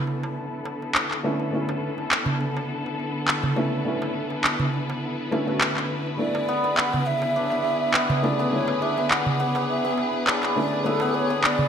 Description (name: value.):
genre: organic downtempo.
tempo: 103 BPM.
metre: 4/4.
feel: swing 54% on 16ths.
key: B dorian.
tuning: A4 = 440 Hz.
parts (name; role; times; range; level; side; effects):
felt-muted upright piano; accompaniment; 0.0-11.7 s; D3 to D5; -30 LUFS; equal; digital delay.
warm studio string section; sustained chords; 0.0-11.7 s; D3 to B4; -29 LUFS; left 2 dB; low-pass filter.
santur; arpeggios; 0.0-0.6, 6.5-11.7 s; B3 to D4; -27 LUFS; left 1 dB; digital delay.
darbuka; percussion; 0.1-11.7 s; none; -29 LUFS; right 2 dB; none.
electronic handclaps; drums; 0.9-11.6 s; none; -24 LUFS; equal; gated reverb.
breathy mellow ney; melody; 6.2-11.7 s; A4 to F#5; -26 LUFS; right 1 dB; ping-pong delay.
room: moderate plate reverb, RT60 1.9 s.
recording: bright 1980s-style digital production.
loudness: -22 LUFS.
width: side -8 dB against mid.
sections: 0.0-11.7 A section.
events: filter sweep on string section 0.0-11.7.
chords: 0.0 Bm11.